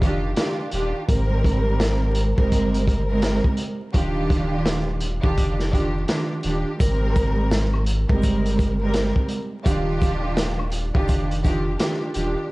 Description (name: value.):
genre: hip hop, boom-bap hip-hop.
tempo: 84 BPM.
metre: 4/4.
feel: swing 61% on 16ths.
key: unclear.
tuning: A4 = 441 Hz.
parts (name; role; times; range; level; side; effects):
warm studio string section; accompaniment; 0.0-12.5 s; Ab2 to Bb4; -24 LUFS; right 1 dB; none.
warm sub bass; bass; 0.0-12.4 s; Eb1 to Ab1; -24 LUFS; equal; none.
crunchy breakbeat drum kit; drums; 0.0-12.4 s; hi-hat, kick drum, snare drum; -23 LUFS; equal; none.
tube shaker and woodblock; percussion; 6.8-12.4 s; none; -40 LUFS; left 4 dB; none.
room: little or no reverb.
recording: dark, warm production, vinyl crackle, nothing above 10.5 kHz.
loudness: -19 LUFS.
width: side -21 dB against mid.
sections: 0.0-12.5 A section.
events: none.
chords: 0.0 Ebmaj9; 1.1 Abmaj9; 3.9 Ebmaj9; 6.8 Abmaj9; 9.7 Ebmaj9.